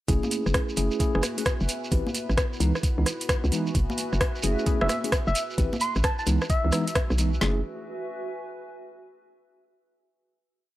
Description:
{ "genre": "UK garage, two-step garage", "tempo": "131 BPM", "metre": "4/4", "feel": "swing 65% on 16ths", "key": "F# minor", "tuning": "A4 = 440 Hz", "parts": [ { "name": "warm analog pad", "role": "sustained chords", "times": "0.1-7.4 s", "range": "B3 to B4", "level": "-42 LUFS", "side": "left 1 dB", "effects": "chorus, sidechain pumping" }, { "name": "mellow tine electric piano", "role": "stabs", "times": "0.1-7.6 s", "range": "E3 to B4", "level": "-30 LUFS", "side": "equal", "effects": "medium stereo tremolo, tape echo" }, { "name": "hollow knocking FM bass", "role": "bass", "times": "0.1-7.6 s", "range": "F#1 to C#2", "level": "-25 LUFS", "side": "equal", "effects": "none" }, { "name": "garage drum kit", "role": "drums", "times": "0.1-7.6 s", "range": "kick drum, snare drum", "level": "-26 LUFS", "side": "equal", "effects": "overdrive, studio reverb" }, { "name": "garage drum kit", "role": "drums", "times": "0.1-7.3 s", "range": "congas, hi-hat, rim click", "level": "-29 LUFS", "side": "equal", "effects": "overdrive, studio reverb" }, { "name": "shekere", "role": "percussion", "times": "0.1-7.4 s", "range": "none", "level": "-35 LUFS", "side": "right 3 dB", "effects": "none" }, { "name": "warbly tape-like pad", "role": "texture", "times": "0.9-9.2 s", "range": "F#4 to G#5", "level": "-38 LUFS", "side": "equal", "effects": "chorus, built-in reverb, phaser, sidechain pumping" }, { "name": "soft struck synth lead", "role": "melody", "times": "4.8-7.0 s", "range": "E5 to C6", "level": "-30 LUFS", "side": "equal", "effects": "chorus, phaser, tape echo" } ], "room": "little or no reverb", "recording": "dry, gritty hardware recording", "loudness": "-23 LUFS", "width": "side -15 dB against mid", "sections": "0.1-7.4 drop; 7.4-9.2 final chord", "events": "drop 0.1-7.4", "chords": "0.1 F#m7; 1.9 Am7; 2.6 C#m7; 3.7 F#m7; 5.6 Am7; 6.3 C#m7; 7.4 F#7(no3)" }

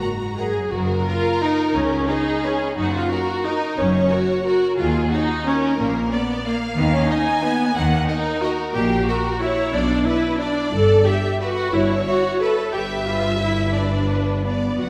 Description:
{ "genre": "classical, orchestral ballroom waltz", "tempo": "161-199 BPM", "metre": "3/4", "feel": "rubato", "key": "F# major", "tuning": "A4 = 440 Hz", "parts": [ { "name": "clear studio violin section", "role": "melody", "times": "0.0-14.9 s", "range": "A#4 to A#5", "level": "-39 LUFS", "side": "equal", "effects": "none" }, { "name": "rich studio violin section", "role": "second line", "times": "0.0-14.9 s", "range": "F#4 to A#5", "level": "-28 LUFS", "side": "equal", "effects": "none" }, { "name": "rich studio viola section", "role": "accompaniment", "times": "0.0-14.9 s", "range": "A#3 to A4", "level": "-23 LUFS", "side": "equal", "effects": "none" }, { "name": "mellow French horn section", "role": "sustained chords", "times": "0.0-0.5 s", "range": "F#3 to A#4", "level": "-36 LUFS", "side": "equal", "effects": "none" }, { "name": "clear studio cello section", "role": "bass", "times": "0.0-14.9 s", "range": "C#2 to D#3", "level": "-28 LUFS", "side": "equal", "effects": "none" }, { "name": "rich symphonic double bass section", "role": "bass", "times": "0.7-14.9 s", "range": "F#1 to D#2", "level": "-28 LUFS", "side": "equal", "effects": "none" } ], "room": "wet concert hall reverb, RT60 1.9 s", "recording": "none", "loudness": "-20 LUFS", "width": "mono", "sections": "0.7-14.9 A section", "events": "none", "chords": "0.0 F#; 1.7 C#5; 2.8 F#; 4.8 D#m7; 5.8 A#; 6.8 D#5; 8.7 F#7/A#; 9.7 Bm; 10.7 Em/G; 12.7 G7" }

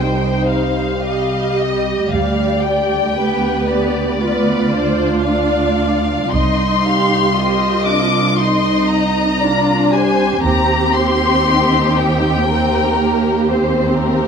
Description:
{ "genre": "classical, slow romantic movement for string orchestra", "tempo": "58 BPM", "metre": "4/4", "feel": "rubato", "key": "C minor", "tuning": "A4 = 439 Hz", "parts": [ { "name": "warm studio violin section", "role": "melody", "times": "0.0-13.5 s", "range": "D5 to D6", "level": "-19 LUFS", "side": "left 4 dB", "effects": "none" }, { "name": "warm studio violin section", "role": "second line", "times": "0.0-14.3 s", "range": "G4 to F5", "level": "-21 LUFS", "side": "left 2 dB", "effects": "none" }, { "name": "warm symphonic viola section", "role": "accompaniment", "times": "0.0-14.3 s", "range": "G3 to G4", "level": "-18 LUFS", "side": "right 1 dB", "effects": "none" }, { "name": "warm studio cello section", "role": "bass", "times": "0.0-14.3 s", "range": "C2 to Eb2", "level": "-19 LUFS", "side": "right 3 dB", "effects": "none" }, { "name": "dark studio double bass section", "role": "bass", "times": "2.1-11.4 s", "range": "C2 to Eb2", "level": "-22 LUFS", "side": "right 3 dB", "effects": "none" } ], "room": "light reverb", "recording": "close, detailed microphones", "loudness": "-13 LUFS", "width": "side -6 dB against mid", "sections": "0.0-14.3 A section", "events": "none", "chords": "0.0 Cm; 2.1 G7/D; 6.3 Cm; 10.4 Cm/Eb" }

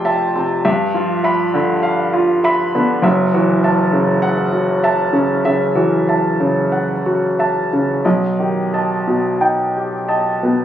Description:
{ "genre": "classical, impressionist solo piano", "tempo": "44-51 BPM", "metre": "4/4", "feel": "rubato", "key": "unclear", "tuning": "A4 = 440 Hz", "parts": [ { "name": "warm grand piano", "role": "solo", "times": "0.0-10.6 s", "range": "F1 to A6", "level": "-14 LUFS", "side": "equal", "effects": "none" } ], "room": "light reverb", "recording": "recorded on a phone in the room, studio reverb", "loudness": "-14 LUFS", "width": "side -10 dB against mid", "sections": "0.0-10.6 A section", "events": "none", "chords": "0.0 Fmaj9; 0.7 G6; 3.0 F#m7; 8.0 Baug7" }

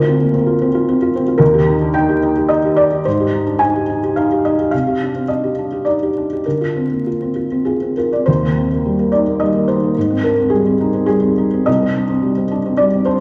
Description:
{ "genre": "neoclassical minimalist piano", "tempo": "96-115 BPM", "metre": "3/4", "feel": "rubato", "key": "Eb major", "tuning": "A4 = 440 Hz", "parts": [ { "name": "felt-muted upright piano", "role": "solo", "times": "0.0-13.2 s", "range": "C2 to Ab5", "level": "-16 LUFS", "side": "equal", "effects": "none" } ], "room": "wet large studio reverb, RT60 1.4 s", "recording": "vinyl crackle", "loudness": "-16 LUFS", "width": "mono", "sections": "0.0-8.3 A section; 8.3-13.2 B section", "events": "none", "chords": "0.0 Bbadd9/D; 1.4 Eb; 3.1 Abmaj7; 4.7 Cmadd9; 6.4 Bbadd9/D; 8.3 Eb; 10.0 Abmaj7; 11.7 Cmadd9" }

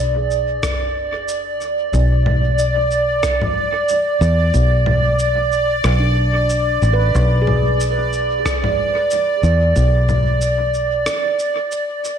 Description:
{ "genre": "ambient dub", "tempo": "92 BPM", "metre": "4/4", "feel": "swing 56% on 16ths", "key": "B dorian", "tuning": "A4 = 440 Hz", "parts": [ { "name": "warbly tape-like pad", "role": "sustained chords", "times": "0.0-12.2 s", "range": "D5", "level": "-19 LUFS", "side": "right 2 dB", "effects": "chorus, built-in reverb" }, { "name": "handpan", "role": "arpeggios", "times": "0.0-0.1, 6.0-9.2 s", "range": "D4 to B4", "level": "-28 LUFS", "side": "right 2 dB", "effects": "diffuse ambient delay" }, { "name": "fingered electric bass", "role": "bass", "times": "0.0-11.1 s", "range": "F#1 to E2", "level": "-17 LUFS", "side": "equal", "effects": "none" }, { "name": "electronic shaker, rim click and congas", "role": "drums", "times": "0.3-12.2 s", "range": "none", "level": "-26 LUFS", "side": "left 2 dB", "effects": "dub echo" }, { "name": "electronic kick drum", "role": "drums", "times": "0.6-9.9 s", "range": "none", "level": "-23 LUFS", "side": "equal", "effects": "overdrive" }, { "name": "bubbling stepped-filter texture", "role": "texture", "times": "2.2-12.2 s", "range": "D5", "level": "-26 LUFS", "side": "left 1 dB", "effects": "chorus, built-in reverb" } ], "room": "wet plate reverb, RT60 2.2 s", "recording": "dreamy mix soaked in reverb", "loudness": "-15 LUFS", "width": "side -8 dB against mid", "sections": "0.0-12.2 A section", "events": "break 11.1-12.2", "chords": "0.0 Bm" }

